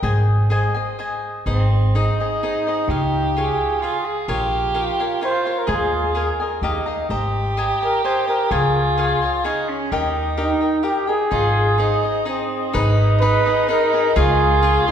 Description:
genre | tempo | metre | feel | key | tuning
mexican folk, mariachi | 128 BPM | 3/4 | straight | Ab major | A4 = 441 Hz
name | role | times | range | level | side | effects
cavaquinho | accompaniment | 0.0-14.9 s | Eb4 to Bb5 | -24 LUFS | left 3 dB | none
upright bass | bass | 0.0-14.8 s | Ab1 to Eb2 | -21 LUFS | equal | none
clear soprano saxophone | second line | 1.5-14.9 s | C4 to Ab4 | -23 LUFS | right 1 dB | none
mellow trumpet | melody | 2.4-14.9 s | Eb4 to C5 | -21 LUFS | right 1 dB | none
room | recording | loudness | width
wet scoring stage reverb, RT60 1.9 s | heard from further back in the room | -17 LUFS | side -8 dB against mid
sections
0.0-1.5 A section; 1.5-12.7 A section; 12.7-14.9 B section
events
none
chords
0.0 Ab; 2.9 Db; 4.3 Bbm; 5.7 Ebsus4; 6.6 Ebadd9; 7.1 Abadd9; 8.5 Db; 9.9 Eb; 11.3 Ab; 12.7 G#m; 14.2 C#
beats
| 0.02 0.50 0.98 | 1.47 1.94 2.42 | 2.89 3.36 3.82 | 4.28 4.75 5.21 | 5.68 6.15 6.62 | 7.10 7.57 8.04 | 8.51 8.98 9.45 | 9.92 10.38 10.85 | 11.31 11.79 12.26 | 12.74 13.21 13.68 | 14.15 14.62

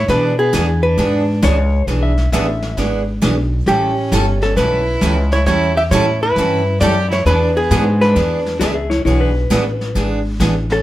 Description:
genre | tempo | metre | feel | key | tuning
country, western swing | 134 BPM | 4/4 | swing 68% on 8ths | E mixolydian | A4 = 440 Hz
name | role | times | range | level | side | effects
hollow-body jazz guitar | melody | 0.0-10.8 s | G4 to E5 | -17 LUFS | equal | none
clear fiddle | second line | 0.0-10.8 s | B3 to G4 | -24 LUFS | right 2 dB | none
upright bass | bass | 0.0-10.8 s | G1 to B2 | -17 LUFS | equal | none
picked steel-string acoustic guitar | accompaniment | 0.1-10.5 s | E3 to A4 | -20 LUFS | right 2 dB | none
vintage brush drum kit | drums | 0.1-10.8 s | brushed snare drum, hi-hat, kick drum, snare drum | -24 LUFS | equal | none
clean lap steel guitar | second line | 1.4-2.8, 8.6-10.1 s | E4 to E5 | -21 LUFS | left 3 dB | none
room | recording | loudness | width
moderate studio reverb, RT60 0.8 s | band playing live in one room | -13 LUFS | side -15 dB against mid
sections
0.0-10.8 A section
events
none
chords
0.0 E7; 3.7 A7; 7.3 E7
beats
| 0.09 0.54 0.99 1.43 | 1.88 2.33 2.78 3.23 | 3.67 4.12 4.57 5.02 | 5.47 5.92 6.37 6.81 | 7.26 7.71 8.16 8.61 | 9.05 9.50 9.95 10.40

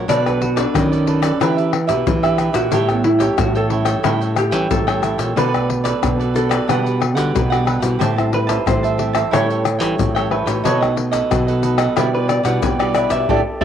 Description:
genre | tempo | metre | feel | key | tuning
samba and choro | 91 BPM | 4/4 | straight | unclear | A4 = 440 Hz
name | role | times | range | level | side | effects
cavaquinho | accompaniment | 0.0-13.6 s | D4 to A5 | -22 LUFS | right 8 dB | none
nylon-string guitar | accompaniment | 0.0-13.6 s | F#2 to G4 | -27 LUFS | left 7 dB | none
nylon-string guitar | bass | 0.0-13.6 s | A2 to E3 | -20 LUFS | right 1 dB | none
hollow-body jazz guitar | second line | 0.1-13.6 s | B3 to G5 | -21 LUFS | equal | none
egg shaker, surdo, pandeiro and tamborim | percussion | 0.1-13.6 s | none | -21 LUFS | left 6 dB | none
room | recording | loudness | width
moderate spring reverb, RT60 2.6 s | home recording on cassette | -15 LUFS | side -9 dB against mid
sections
0.0-13.6 A section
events
hollow-body jazz guitar solo 0.0-13.6; band accent 13.3-13.6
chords
0.1 Bm7; 1.4 Em7; 2.7 A7; 5.4 Bm7; 6.7 Gmaj7/B; 8.0 Am7; 9.3 A7; 10.6 B7; 12.0 Em7/B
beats
| 0.09 0.75 1.41 2.07 | 2.73 3.39 4.05 4.71 | 5.37 6.03 6.69 7.35 | 8.01 8.67 9.33 9.99 | 10.65 11.31 11.97 12.63 | 13.29

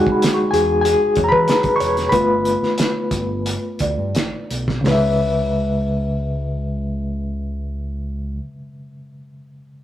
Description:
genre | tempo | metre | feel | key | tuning
lush 1970s-style soul | 82-97 BPM | 4/4 | straight | C# minor | A4 = 440 Hz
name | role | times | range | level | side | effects
barky reed electric piano | accompaniment | 0.0-9.8 s | C#3 to C#6 | -18 LUFS | left 1 dB | overdrive, fast tremolo
small celesta | texture | 0.0-8.4 s | C#5 to C#6 | -30 LUFS | right 3 dB | none
overdriven fingered electric bass | bass | 0.1-8.4 s | E1 to E3 | -25 LUFS | equal | none
cloth-damped thuddy drum kit | drums | 0.1-5.0 s | hi-hat, kick drum, snare drum, toms | -23 LUFS | right 1 dB | none
room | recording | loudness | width
light reverb | rough rehearsal-room recording, tube saturation | -17 LUFS | side -12 dB against mid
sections
0.0-4.9 A section; 4.9-7.8 B section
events
slowing down 0.0-4.9; reed electric piano solo 0.0-4.9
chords
0.0 Emaj7; 2.1 G9; 4.9 C#m7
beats
0.22 0.84 1.48 | 2.12 2.78 3.45 4.15 | 4.86 5.59 6.32 7.04

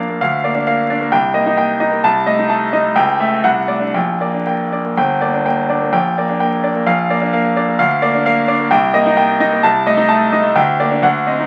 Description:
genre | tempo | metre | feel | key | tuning
classical, virtuoso piano study | 129 BPM | 2/4 | rubato | G minor | A4 = 439 Hz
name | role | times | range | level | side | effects
warm grand piano | solo | 0.0-11.5 s | G1 to A5 | -15 LUFS | equal | none
room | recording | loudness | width
moderate large studio reverb, RT60 1.2 s | very old 78 rpm record, vinyl crackle | -15 LUFS | mono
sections
0.0-5.0 A section; 5.0-11.5 B section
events
none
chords
0.2 Bb/D; 1.1 Cm7; 2.0 Adim/C; 3.0 A7/C#; 3.4 D7/C; 3.9 Gm/Bb; 5.0 Gm; 5.9 Gm/Bb; 6.9 Bb; 7.8 Bb/D; 8.7 Cm7; 9.6 Adim/C; 10.6 Gm/D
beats
| 0.21 0.68 | 1.13 1.58 | 2.04 2.50 | 2.96 3.44 | 3.94 4.46 | 4.97 5.45 | 5.93 6.40 | 6.87 7.33 | 7.79 8.25 | 8.71 9.17 | 9.63 10.10 | 10.56 11.04

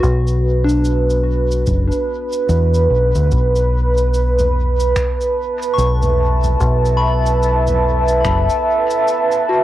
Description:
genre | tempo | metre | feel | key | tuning
ambient dub | 73 BPM | 4/4 | swing 60% on 16ths | unclear | A4 = 439 Hz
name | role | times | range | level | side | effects
deep dark ambient pad | sustained chords | 0.0-9.6 s | B4 to A5 | -17 LUFS | right 2 dB | chorus, built-in reverb, cassette tape
soft synth bell | arpeggios | 0.0-9.6 s | D4 to C#6 | -24 LUFS | left 2 dB | chorus, phaser, vintage 12-bit sampler grit, cassette tape, analog delay
deep dub fingered electric bass | bass | 0.0-8.5 s | F#1 to E2 | -16 LUFS | equal | tube saturation
electronic kick drum | drums | 0.0-8.4 s | none | -21 LUFS | equal | cassette tape
soft-mallet drum kit | drums | 0.0-9.4 s | cabasa, finger snaps, toms | -29 LUFS | left 1 dB | cassette tape, dub echo
room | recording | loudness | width
light reverb | home recording on cassette | -14 LUFS | side -13 dB against mid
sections
0.0-9.6 A section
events
none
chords
0.0 Bm; 3.3 A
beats
| 0.03 0.85 1.67 2.50 | 3.32 4.14 4.96 5.78 | 6.60 7.43 8.25 9.07

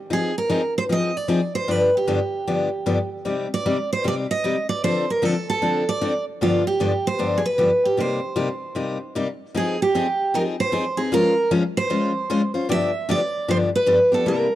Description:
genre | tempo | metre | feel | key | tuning
jazz | 153 BPM | 4/4 | swing 62% on 8ths | C minor, F minor from 9.6 s | A4 = 441 Hz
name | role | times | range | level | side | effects
picked steel-string acoustic guitar | melody | 0.1-14.6 s | F4 to E5 | -21 LUFS | right 2 dB | none
picked steel-string acoustic guitar | accompaniment | 0.1-14.5 s | G2 to C5 | -23 LUFS | left 3 dB | none
room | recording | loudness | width
small room ambience | dry, close 1970s-style studio recording | -19 LUFS | side -13 dB against mid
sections
0.0-9.6 A section; 9.6-14.6 B section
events
none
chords
0.1 Fm7; 1.7 G7; 3.3 Cm; 4.8 Dm7; 6.4 G7; 8.0 Cm7; 9.6 Fm7; 11.1 Dbmaj7/F; 12.7 G7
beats
| 0.10 0.49 0.89 1.28 | 1.68 2.07 2.47 2.86 | 3.26 3.65 4.04 4.44 | 4.83 5.22 5.62 6.01 | 6.41 6.80 7.19 7.59 | 7.98 8.37 8.77 9.16 | 9.55 9.94 10.34 10.73 | 11.12 11.51 11.90 12.30 | 12.69 13.08 13.47 13.86 | 14.26

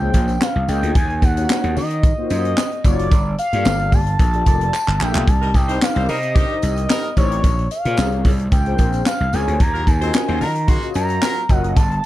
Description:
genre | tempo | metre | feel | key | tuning
early-eighties boogie funk | 111 BPM | 4/4 | straight | unclear | A4 = 440 Hz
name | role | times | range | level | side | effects
expressive synth lead | melody | 0.0-12.1 s | Db5 to C6 | -23 LUFS | equal | chorus
mellow synth brass | accompaniment | 0.0-11.8 s | C3 to E5 | -26 LUFS | left 4 dB | chorus
gritty slap bass | bass | 0.0-12.0 s | F1 to Eb3 | -20 LUFS | equal | overdrive
tight funk drum kit | drums | 0.1-12.1 s | handclaps, hi-hat, kick drum, snare drum | -18 LUFS | equal | none
tambourine | percussion | 0.1-11.9 s | none | -39 LUFS | right 7 dB | none
clear horn section | second line | 5.4-11.4 s | Db3 to C5 | -28 LUFS | equal | none
room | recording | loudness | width
little or no reverb | dark, warm production | -15 LUFS | side -15 dB against mid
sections
0.0-12.1 A section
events
drum fill 4.7-5.3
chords
0.0 Bbm9; 1.0 Ebm9; 3.1 Gm9; 5.3 Cm9; 7.4 Bbm9; 9.6 Ebm9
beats
0.41 | 0.95 1.49 2.03 2.57 | 3.12 3.65 4.20 4.74 | 5.28 5.82 6.36 6.90 | 7.44 7.98 8.52 9.06 | 9.60 10.14 10.68 11.22 | 11.76

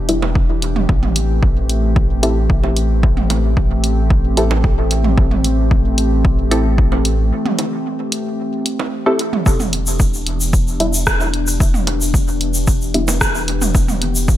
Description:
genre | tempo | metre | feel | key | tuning
dub techno | 112 BPM | 4/4 | straight | unclear | A4 = 442 Hz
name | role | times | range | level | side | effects
warbly tape-like pad | sustained chords | 0.0-14.4 s | E3 to G4 | -22 LUFS | left 1 dB | chorus, built-in reverb, sidechain pumping
soft dub sub bass | bass | 0.0-14.4 s | E1 to A1 | -18 LUFS | equal | sidechain pumping
filtered dub chord stab | stabs | 0.1-13.1 s | G3 to A4 | -21 LUFS | equal | chorus, phaser, cassette tape, sidechain pumping, dub echo
punchy analog drum machine | drums | 0.1-14.1 s | hi-hat, rim click | -20 LUFS | equal | gated reverb, dub echo
electronic bongos and toms | percussion | 0.2-14.0 s | none | -25 LUFS | right 4 dB | sidechain pumping on toms, sidechain pumping on perc, gated reverb, dub echo
electronic kick drum | drums | 0.4-14.4 s | none | -16 LUFS | equal | none
egg shaker | percussion | 9.5-14.4 s | none | -24 LUFS | left 2 dB | none
room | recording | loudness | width
light reverb | bright 1980s-style digital production | -14 LUFS | side -13 dB against mid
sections
0.0-14.4 A section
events
filter sweep on synth stab 0.0-14.4; break 7.3-9.5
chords
0.0 Em7; 0.9 Am7; 9.5 Em7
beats
0.35 | 0.89 1.43 1.96 2.50 | 3.03 3.57 4.10 4.64 | 5.18 5.71 6.25 6.78 | 7.32 7.85 8.39 8.93 | 9.46 10.00 10.53 11.07 | 11.60 12.14 12.68 13.21 | 13.75 14.28

